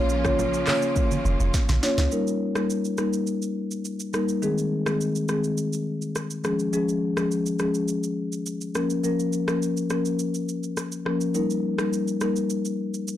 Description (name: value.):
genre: afrobeats.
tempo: 104 BPM.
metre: 4/4.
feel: straight.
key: Eb mixolydian.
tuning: A4 = 441 Hz.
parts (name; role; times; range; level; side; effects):
clear symphonic string section; sustained chords; 0.0-2.1 s; Db3 to F4; -31 LUFS; right 2 dB; none.
deep log drum bass; bass; 0.0-2.1 s; F1 to Db2; -24 LUFS; equal; none.
afro-pop drum kit; drums; 0.1-13.2 s; handclaps, hi-hat, kick drum, rim click, shaker, snare drum; -29 LUFS; equal; soft clipping on snare.
marimba with soft mallets; accompaniment; 0.2-12.4 s; Eb3 to Db5; -24 LUFS; left 2 dB; none.
congas; percussion; 0.2-1.8 s; none; -32 LUFS; right 4 dB; none.
room: moderate studio reverb, RT60 0.6 s.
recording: blown-out, overdriven recording, overdrive.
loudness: -23 LUFS.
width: side -12 dB against mid.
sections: 0.0-2.1 A section; 2.1-13.2 B section.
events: drum fill 1.5-2.1.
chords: 0.0 Bbm; 2.1 Eb; 4.4 Ab; 6.4 Db; 8.8 Bbm; 11.3 Eb.